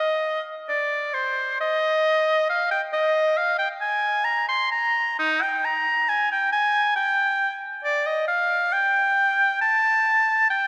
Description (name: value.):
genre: classical, baroque-style fantasia for unaccompanied oboe.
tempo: 68 BPM.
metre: 4/4.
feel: rubato.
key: unclear.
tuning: A4 = 441 Hz.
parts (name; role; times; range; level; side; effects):
bright oboe; solo; 0.0-10.7 s; Eb4 to C6; -22 LUFS; equal; none.
room: wet church reverb, RT60 3.3 s.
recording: none.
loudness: -22 LUFS.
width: mono.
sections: 0.0-10.7 A section.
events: none.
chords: none.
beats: 0.69 | 1.60 2.49 3.38 4.26 | 5.18 6.08 6.95 7.83 | 8.72 9.61 10.50.